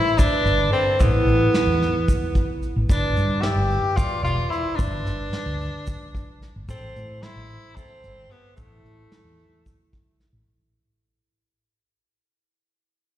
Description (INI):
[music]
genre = progressive instrumental, band music in an uneven meter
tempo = 222 BPM (eighths)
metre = 7/8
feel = straight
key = A minor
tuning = A4 = 440 Hz
[part]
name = warm tenor saxophone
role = melody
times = 0.0-9.9 s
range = A3 to G4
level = -24 LUFS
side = left 1 dB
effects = slapback echo
[part]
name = concert harp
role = second line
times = 0.0-11.2 s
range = E4 to E5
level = -28 LUFS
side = right 3 dB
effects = slapback echo
[part]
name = vintage brush drum kit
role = drums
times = 0.2-10.3 s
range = hi-hat, kick drum, snare drum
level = -23 LUFS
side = equal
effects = none
[part]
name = tube shaker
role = percussion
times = 0.2-9.9 s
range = none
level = -46 LUFS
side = right 3 dB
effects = none
[part]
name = mellow fretless electric bass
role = bass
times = 0.5-10.4 s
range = E1 to A2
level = -23 LUFS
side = equal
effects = none
[sound]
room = light reverb, studio ambience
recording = live gig heard through the venue's PA, recital hall reverb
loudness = -19 LUFS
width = side -12 dB against mid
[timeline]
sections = 0.0-10.5 A section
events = fade-out 0.0-10.5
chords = 0.0 Asus2; 2.9 G6; 6.7 Am